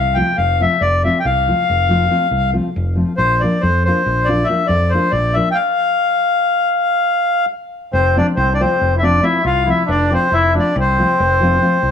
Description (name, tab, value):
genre	balkan folk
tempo	278 BPM (eighths)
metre	11/8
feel	straight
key	F major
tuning	A4 = 440 Hz
part	accordion	melody	0.0-11.9 s	C5 to G5	-16 LUFS	left 2 dB	cassette tape
part	overdriven fingered electric bass	bass	0.0-11.9 s	F1 to F2	-18 LUFS	equal	none
part	nylon-string guitar	accompaniment	0.2-11.8 s	F3 to F4	-20 LUFS	left 1 dB	cassette tape
part	mellow trumpet	second line	7.9-11.9 s	C4 to F4	-20 LUFS	left 2 dB	cassette tape
room	light reverb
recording	home recording on cassette, small room ambience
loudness	-13 LUFS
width	side -8 dB against mid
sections	0.0-7.9 A section; 7.9-11.9 A section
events	none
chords	0.0 F; 3.2 Bb; 5.6 N.C.; 7.9 F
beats	0.17 0.38 0.60 | 0.81 1.03 1.24 1.46 1.67 1.89 2.10 2.32 2.54 2.75 2.97 | 3.18 3.40 3.62 3.83 4.05 4.26 4.48 4.69 4.91 5.13 5.34 | 5.56 5.78 5.99 6.21 6.42 6.64 6.86 7.07 7.29 7.50 7.72 | 7.94 8.15 8.37 8.59 8.80 9.02 9.24 9.45 9.67 9.88 10.10 | 10.32 10.53 10.75 10.97 11.18 11.40 11.62 11.83